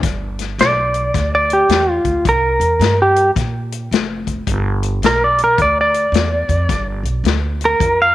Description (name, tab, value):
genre	electric blues shuffle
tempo	108 BPM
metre	4/4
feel	swing 64% on 8ths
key	unclear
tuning	A4 = 437 Hz
part	upright bass	bass	0.0-8.1 s	F1 to Bb2	-20 LUFS	right 1 dB	none
part	natural country drum kit	drums	0.0-8.0 s	hi-hat, kick drum, snare drum	-20 LUFS	left 5 dB	none
part	clean lap steel guitar	melody	0.6-8.1 s	F4 to F5	-14 LUFS	right 1 dB	none
room	moderate spring reverb, RT60 1.8 s, small room ambience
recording	1960s-style stereo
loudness	-13 LUFS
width	side -14 dB against mid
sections	0.0-8.1 A section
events	electric slide guitar solo 0.0-8.1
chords	0.0 G; 2.3 C7; 4.5 G7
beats	| 0.03 0.59 1.14 1.70 | 2.25 2.81 3.36 3.92 | 4.47 5.03 5.58 6.13 | 6.69 7.24 7.80